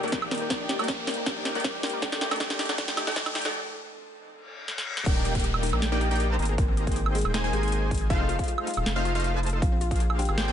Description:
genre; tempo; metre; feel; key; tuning
future bass; 158 BPM; 4/4; half-time; Eb major; A4 = 439 Hz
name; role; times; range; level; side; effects
buzzing kalimba; melody; 0.0-10.5 s; Ab3 to G5; -35 LUFS; left 2 dB; sidechain pumping, tape echo
ethereal airy pad; sustained chords; 0.0-5.0 s; Bb2 to D5; -43 LUFS; equal; ensemble chorus, built-in reverb, tremolo, sidechain pumping
wide unison pluck; arpeggios; 0.0-10.5 s; C4 to Bb4; -40 LUFS; left 4 dB; none
supersaw stab; riff; 0.0-10.5 s; A3 to Bb5; -31 LUFS; equal; sidechain pumping
trap drum kit; drums; 0.0-10.5 s; crash cymbal, hi-hat, snare drum, woodblock; -30 LUFS; right 1 dB; overdrive
riser, reverse cymbal and downlifter; sound effects; 0.0-8.1 s; none; -36 LUFS; left 1 dB; none
electronic kick drum; drums; 0.1-10.0 s; none; -27 LUFS; equal; none
wide unison pluck; arpeggios; 5.1-10.5 s; F5 to Bb5; -40 LUFS; equal; none
saturated sub bass; bass; 5.1-10.5 s; Eb1 to Bb1; -27 LUFS; equal; sidechain pumping
room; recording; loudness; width
light reverb; high-pass filter, nothing above 10.8 kHz; -24 LUFS; side -9 dB against mid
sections
0.0-5.1 A section; 5.1-10.5 B section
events
build-up 0.0-5.1; drum fill 0.0-3.5, 4.7-5.1; riser 0.0-3.5; filter sweep 0.0-5.1; break 3.5-5.1; reverse cymbal 4.4-5.1; drop 5.1-10.5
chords
0.3 Abmaj9; 2.0 F7; 3.5 Bb9; 5.1 Ebmaj7; 6.4 Abmaj9; 8.1 F7; 9.6 Bb9

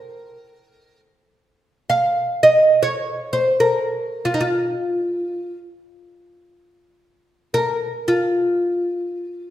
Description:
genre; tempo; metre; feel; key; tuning
Turkish makam ensemble; free time; none; none; F makam ussak; A4 = 439 Hz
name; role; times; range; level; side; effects
oud; solo; 0.0-9.5 s; Eb4 to F5; -17 LUFS; equal; none
room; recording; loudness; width
wet recital hall reverb, RT60 1.4 s; none; -17 LUFS; side -12 dB against mid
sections
0.0-9.5 A section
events
none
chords
none

